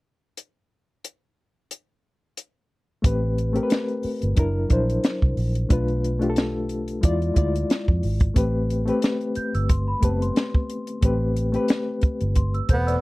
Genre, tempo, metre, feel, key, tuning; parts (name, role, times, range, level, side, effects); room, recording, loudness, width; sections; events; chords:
lush 1970s-style soul; 90 BPM; 4/4; swing 54% on 16ths; A4 = 440 Hz
compact cocktail drum kit; drums; 0.4-13.0 s; hi-hat, kick drum, snare drum; -20 LUFS; equal
reed electric piano; accompaniment; 3.0-13.0 s; F#3 to D5; -25 LUFS; left 2 dB; overdrive, fast tremolo
vintage muted fingered electric bass; bass; 3.0-13.0 s; E1 to F2; -24 LUFS; equal
large celesta; texture; 9.4-13.0 s; A5 to G6; -33 LUFS; right 2 dB
breathy tenor saxophone; melody; 12.7-13.0 s; B3; -25 LUFS; right 1 dB
little or no reverb; dry, close 1970s-style studio recording; -20 LUFS; side -21 dB against mid
0.4-3.0 A section; 3.0-13.0 B section
0.4 N.C.; 3.0 Am9; 4.4 F#aug7; 5.7 Bm7b5; 7.0 E7b9; 8.4 Am9